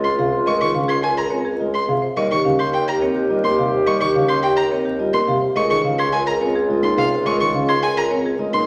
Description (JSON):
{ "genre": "classical, minimalist pattern music", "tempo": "106 BPM", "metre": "3/4", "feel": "straight", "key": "Db lydian", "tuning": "A4 = 441 Hz", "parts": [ { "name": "marimba with medium hard mallets", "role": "melody", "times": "0.0-8.6 s", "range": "G4 to F5", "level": "-28 LUFS", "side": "equal", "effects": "none" }, { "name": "dark clarinet", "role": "second line", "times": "0.0-8.7 s", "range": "F4 to G4", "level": "-29 LUFS", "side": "equal", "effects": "none" }, { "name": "dark concert grand piano", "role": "accompaniment", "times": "0.0-8.7 s", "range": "C3 to Bb3", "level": "-29 LUFS", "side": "equal", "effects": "none" }, { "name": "rich violin", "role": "arpeggios", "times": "0.0-8.6 s", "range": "F5 to Db6", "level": "-25 LUFS", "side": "equal", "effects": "none" }, { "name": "vibraphone with soft mallets", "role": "arpeggios", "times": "0.0-8.7 s", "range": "C4 to Bb4", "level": "-26 LUFS", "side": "equal", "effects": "none" }, { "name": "mellow bassoon", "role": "bass", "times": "0.0-8.7 s", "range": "Db2 to Eb2", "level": "-25 LUFS", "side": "equal", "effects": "none" } ], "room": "wet recital hall reverb, RT60 1.5 s", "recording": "vinyl crackle", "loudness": "-19 LUFS", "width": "mono", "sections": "0.0-8.7 A section", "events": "none", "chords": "0.0 Db69; 2.2 Eb9; 5.6 Db69", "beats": "| 0.47 1.03 1.60 | 2.17 2.73 3.30 | 3.87 4.43 5.00 | 5.56 6.13 6.70 | 7.26 7.83 8.39" }